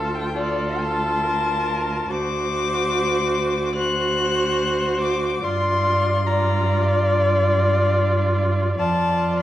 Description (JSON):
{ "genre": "classical, slow romantic movement for string quartet", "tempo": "65-74 BPM", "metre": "4/4", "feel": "rubato", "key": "D minor", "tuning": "A4 = 439 Hz", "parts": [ { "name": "rich violin", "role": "melody", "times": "0.0-9.4 s", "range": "D5 to F#6", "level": "-24 LUFS", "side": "left 4 dB", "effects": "none" }, { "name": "warm violin", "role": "second line", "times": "0.0-9.4 s", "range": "A4 to D5", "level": "-24 LUFS", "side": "left 2 dB", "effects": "none" }, { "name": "rich viola", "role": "accompaniment", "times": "0.0-9.4 s", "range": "F4 to F#4", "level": "-25 LUFS", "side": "right 2 dB", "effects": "none" }, { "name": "rich cello", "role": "bass", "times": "0.0-9.4 s", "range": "D2 to G2", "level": "-24 LUFS", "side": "right 2 dB", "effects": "none" } ], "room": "moderate recital hall reverb, RT60 1.2 s", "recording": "worn, warbling old tape, cassette tape, warbly pitch drift", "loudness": "-18 LUFS", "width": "side -13 dB against mid", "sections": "0.0-9.4 A section", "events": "none", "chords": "0.0 Dm; 2.1 D7; 5.4 Gm7; 8.8 Dm/F" }